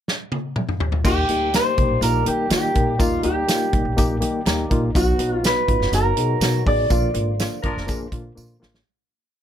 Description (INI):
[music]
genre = uptempo 1960s-style soul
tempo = 123 BPM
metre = 4/4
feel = straight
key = Eb major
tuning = A4 = 440 Hz
[part]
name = natural country drum kit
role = drums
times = 0.1-8.9 s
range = crash cymbal, hi-hat, kick drum, snare drum, toms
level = -22 LUFS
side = equal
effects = none
[part]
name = reed electric piano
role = accompaniment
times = 1.0-8.8 s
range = Bb2 to Bb5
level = -25 LUFS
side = left 3 dB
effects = fast tremolo, plate reverb
[part]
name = percussive tonewheel organ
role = sustained chords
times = 1.0-8.8 s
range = D3 to G4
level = -33 LUFS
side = right 1 dB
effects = overdrive, slow rotary speaker, plate reverb
[part]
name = upright bass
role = bass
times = 1.0-8.8 s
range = F1 to Eb3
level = -25 LUFS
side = equal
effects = none
[part]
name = tambourine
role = percussion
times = 1.0-8.5 s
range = none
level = -33 LUFS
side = right 6 dB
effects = none
[part]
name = electric guitar through a small old amp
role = melody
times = 1.1-8.3 s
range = F4 to D5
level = -22 LUFS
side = equal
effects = plate reverb
[part]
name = warm horn section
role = second line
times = 7.6-8.0 s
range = F3 to Bb4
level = -30 LUFS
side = equal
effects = plate reverb
[sound]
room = light reverb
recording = none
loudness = -18 LUFS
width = side -10 dB against mid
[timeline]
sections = 0.0-1.0 pickup bar; 1.0-8.9 verse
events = drum fill 0.1-1.0, 8.4-8.9; reed electric piano fill 4.0-4.9; fade-out 6.9-8.9; band accent 6.9-8.9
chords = 0.0 N.C.; 1.0 Eb; 4.9 B; 6.9 Bb